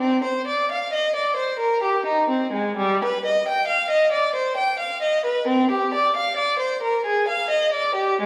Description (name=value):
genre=classical, baroque-style suite movement for unaccompanied violin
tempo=66 BPM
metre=3/4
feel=rubato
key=C minor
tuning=A4 = 436 Hz
part: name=rich violin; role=solo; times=0.0-8.3 s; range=G3 to G5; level=-22 LUFS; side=equal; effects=none
room=wet recital hall reverb, RT60 1.6 s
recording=heard from further back in the room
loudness=-22 LUFS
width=mono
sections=0.0-8.3 A section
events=none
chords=none